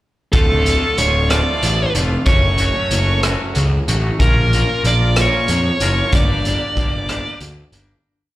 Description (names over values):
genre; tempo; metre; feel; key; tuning
quiet-loud alternative rock; 62 BPM (dotted quarters); 6/8; straight; unclear; A4 = 440 Hz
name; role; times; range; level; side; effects
fuzz lead guitar; melody; 0.3-7.4 s; A4 to D5; -19 LUFS; right 1 dB; distortion, slapback echo
twangy electric guitar; arpeggios; 0.3-8.1 s; A2 to Bb4; -24 LUFS; left 2 dB; harmonic tremolo, slapback echo
fuzz picked electric bass; bass; 0.3-7.9 s; D1 to F2; -18 LUFS; equal; overdrive
raw garage drum kit; drums; 0.3-7.9 s; hi-hat, kick drum, rim click; -19 LUFS; equal; none
room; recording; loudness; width
studio reverb; live gig heard through the venue's PA, recital hall reverb; -14 LUFS; side -16 dB against mid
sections
0.3-8.1 verse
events
fade-out 6.1-8.1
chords
0.3 Dm; 2.3 F#m; 4.2 Bbm; 6.1 Gm